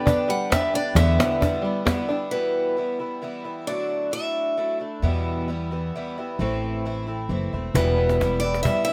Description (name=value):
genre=acoustic folk duo or small band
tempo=133 BPM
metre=3/4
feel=straight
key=E minor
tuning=A4 = 440 Hz
part: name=picked steel-string acoustic guitar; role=melody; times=0.0-4.8, 7.8-8.9 s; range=B4 to F#5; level=-27 LUFS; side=equal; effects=none
part: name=picked twelve-string acoustic guitar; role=accompaniment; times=0.0-8.9 s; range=E2 to B4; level=-31 LUFS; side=equal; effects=none
part: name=open-back banjo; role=arpeggios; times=0.0-2.4, 7.8-8.9 s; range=D3 to E4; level=-30 LUFS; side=equal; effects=none
part: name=cajon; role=percussion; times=0.1-2.1, 7.8-8.8 s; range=none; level=-26 LUFS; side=equal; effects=none
part: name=upright bass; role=bass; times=1.0-1.2, 5.0-8.6 s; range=E1 to E2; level=-27 LUFS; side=equal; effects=none
room=little or no reverb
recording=close, detailed microphones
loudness=-24 LUFS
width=mono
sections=0.0-2.3 A section; 2.3-7.7 B section; 7.7-8.9 C section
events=none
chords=0.0 G; 1.0 Em7; 2.3 Em; 3.7 Dadd9; 5.0 Em; 6.4 Am; 7.7 Em